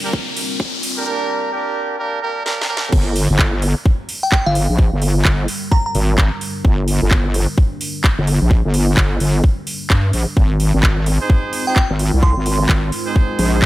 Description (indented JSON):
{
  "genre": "bass house",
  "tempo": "129 BPM",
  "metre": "4/4",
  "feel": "swing 62% on 16ths",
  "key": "G phrygian",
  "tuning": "A4 = 436 Hz",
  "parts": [
    { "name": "deep dark ambient pad", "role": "sustained chords", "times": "0.0-13.7 s", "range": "G3 to C5", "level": "-31 LUFS", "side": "left 1 dB", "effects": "none" },
    { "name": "clear horn section", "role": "stabs", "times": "0.0-2.9, 11.2-13.7 s", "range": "Bb3 to C5", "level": "-22 LUFS", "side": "right 3 dB", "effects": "sidechain pumping, dub echo" },
    { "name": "riser", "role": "sound effects", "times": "0.0-1.1 s", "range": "none", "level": "-25 LUFS", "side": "left 3 dB", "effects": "none" },
    { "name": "warbly tape-like pad", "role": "texture", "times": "0.0-1.1, 11.5-13.7 s", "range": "G3 to Bb4", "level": "-31 LUFS", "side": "equal", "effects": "chorus, built-in reverb, phaser, sidechain pumping" },
    { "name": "electronic kick drum", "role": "drums", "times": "0.1-13.7 s", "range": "none", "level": "-15 LUFS", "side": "equal", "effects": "none" },
    { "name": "house drum kit", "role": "drums", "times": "0.4-13.7 s", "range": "crash cymbal, handclaps, hi-hat, snare drum", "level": "-22 LUFS", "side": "right 1 dB", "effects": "none" },
    { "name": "wobble bass", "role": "bass", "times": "2.9-13.7 s", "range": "G1 to G2", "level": "-16 LUFS", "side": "equal", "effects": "chorus, tube saturation, sidechain pumping" },
    { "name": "glassy synth bell", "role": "melody", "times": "4.2-5.9, 11.7-12.6 s", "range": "F5 to C6", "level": "-23 LUFS", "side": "right 1 dB", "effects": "chorus, tremolo, dub echo" }
  ],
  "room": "little or no reverb",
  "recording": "high-pass filter",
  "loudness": "-14 LUFS",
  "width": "side -16 dB against mid",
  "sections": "0.0-2.9 A section; 2.9-13.7 B section",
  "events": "build-up 0.0-2.9; drum fill 0.0-1.1, 2.5-2.9; riser 0.0-1.1; filter sweep on ambient pad 0.0-2.9; drop 2.9-13.7",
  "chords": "0.0 Gm; 10.4 Ab"
}